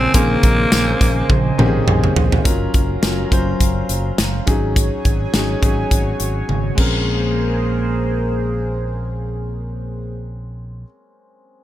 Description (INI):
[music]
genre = 1980s-style pop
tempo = 104 BPM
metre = 4/4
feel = swing 55% on 16ths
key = Bb minor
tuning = A4 = 440 Hz
[part]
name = raspy alto saxophone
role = melody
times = 0.0-1.8 s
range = Bb3 to C4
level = -19 LUFS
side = equal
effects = ping-pong delay
[part]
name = soft synth bell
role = second line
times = 0.0-1.8 s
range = Bb5 to C6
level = -35 LUFS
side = equal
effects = none
[part]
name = clear grand piano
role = accompaniment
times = 0.0-11.6 s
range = Eb3 to C5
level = -23 LUFS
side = left 2 dB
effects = none
[part]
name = chorused pulse-width pad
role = sustained chords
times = 0.0-10.1 s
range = Db3 to Bb5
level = -25 LUFS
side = equal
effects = none
[part]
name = fingered electric bass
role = bass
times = 0.0-10.8 s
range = Gb1 to Bb1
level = -21 LUFS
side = equal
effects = none
[part]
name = modern studio drum kit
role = drums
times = 0.1-6.9 s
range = crash cymbal, hi-hat, kick drum, snare drum, tambourine, toms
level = -17 LUFS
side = equal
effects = none
[sound]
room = light reverb, small room ambience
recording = none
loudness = -15 LUFS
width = side -13 dB against mid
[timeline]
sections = 0.0-2.5 A section; 2.5-7.1 B section; 7.1-9.4 C section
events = drum fill 1.3-2.5, 6.5-7.1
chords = 0.1 Bbm11; 2.5 Gbmaj7; 4.5 Ab7sus4; 6.8 Bbm9